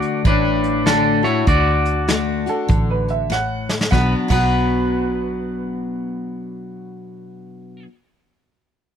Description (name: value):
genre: honky-tonk and classic country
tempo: 98 BPM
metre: 4/4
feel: swing 62% on 8ths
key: B minor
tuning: A4 = 440 Hz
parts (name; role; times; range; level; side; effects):
- electric guitar at the edge of break-up; melody; 0.0-7.8 s; D4 to D5; -21 LUFS; equal; none
- picked steel-string acoustic guitar; accompaniment; 0.0-7.9 s; A2 to F#4; -23 LUFS; left 4 dB; none
- vintage brush drum kit; drums; 0.0-4.4 s; crash cymbal, hi-hat, kick drum, snare drum; -19 LUFS; right 1 dB; none
- vintage muted fingered electric bass; bass; 0.2-7.8 s; A1 to D2; -22 LUFS; right 1 dB; none
- warm upright piano; second line; 2.5-7.8 s; A4 to F#5; -26 LUFS; right 4 dB; none
room: little or no reverb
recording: close, detailed microphones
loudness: -16 LUFS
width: side -8 dB against mid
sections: 0.0-3.9 A section; 3.9-6.4 B section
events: drum fill 3.3-3.9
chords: 0.0 D; 3.9 Bm